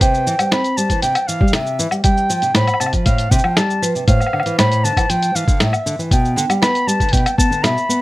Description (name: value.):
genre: folktronica.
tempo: 118 BPM.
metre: 4/4.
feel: straight.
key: C major.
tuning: A4 = 440 Hz.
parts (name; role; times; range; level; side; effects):
dark clarinet; melody; 0.0-8.0 s; E5 to B5; -20 LUFS; equal; vintage 12-bit sampler grit, digital delay.
marimba with medium hard mallets; second line; 0.0-7.8 s; B4 to G5; -25 LUFS; right 3 dB; digital delay.
nylon-string guitar; arpeggios; 0.0-8.0 s; A2 to C4; -20 LUFS; equal; none.
electronic kick drum; drums; 0.0-7.5 s; none; -16 LUFS; equal; none.
lo-fi sampler-style drum kit; drums; 0.0-8.0 s; cabasa, hi-hat, snare drum, woodblock; -20 LUFS; left 1 dB; none.
room: light reverb.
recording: none.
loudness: -14 LUFS.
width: side -18 dB against mid.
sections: 0.0-8.0 A section.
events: none.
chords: 0.0 C; 2.0 Fadd9; 4.1 Dmadd9; 6.1 G.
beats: | 0.01 0.52 1.03 1.54 | 2.04 2.55 3.06 3.57 | 4.08 4.59 5.10 5.60 | 6.11 6.62 7.13 7.64.